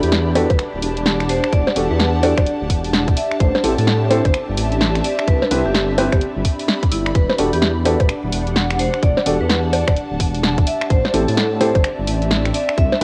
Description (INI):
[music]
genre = UK garage, two-step garage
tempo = 128 BPM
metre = 4/4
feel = swing 62% on 16ths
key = E minor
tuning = A4 = 439 Hz
[part]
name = vibraphone with medium hard mallets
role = melody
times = 0.0-13.0 s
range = E4 to E5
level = -26 LUFS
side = equal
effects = cassette tape, tape echo
[part]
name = ethereal airy pad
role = sustained chords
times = 0.1-13.0 s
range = D4 to D5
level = -31 LUFS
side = equal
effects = ensemble chorus, built-in reverb, sidechain pumping, cassette tape
[part]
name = dark detuned saw bass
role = bass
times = 0.0-13.0 s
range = D1 to A2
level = -23 LUFS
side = equal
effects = sidechain pumping
[part]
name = punchy analog drum machine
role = drums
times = 0.0-13.0 s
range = bongos, finger snaps, hi-hat, snare drum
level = -23 LUFS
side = equal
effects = cassette tape
[part]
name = airy breathy pad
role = texture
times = 0.0-13.0 s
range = C4 to B5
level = -28 LUFS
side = equal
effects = chorus, sidechain pumping, cassette tape
[part]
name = dark baby grand piano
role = stabs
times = 0.4-13.0 s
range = C4 to B4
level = -24 LUFS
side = equal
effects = cassette tape
[part]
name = electronic kick drum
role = drums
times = 0.5-12.9 s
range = none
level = -19 LUFS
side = equal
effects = cassette tape
[sound]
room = light reverb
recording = home recording on cassette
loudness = -18 LUFS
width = mono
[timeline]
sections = 0.0-13.0 A section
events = none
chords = 0.0 Em11; 3.2 Am7; 5.0 Cmaj7; 7.2 Em11; 10.7 Am7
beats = 0.12 0.59 1.06 | 1.53 2.00 2.46 2.93 | 3.40 3.87 4.34 4.81 | 5.28 5.75 6.21 6.68 | 7.15 7.62 8.09 8.56 | 9.03 9.50 9.96 10.43 | 10.90 11.37 11.84 12.31 | 12.78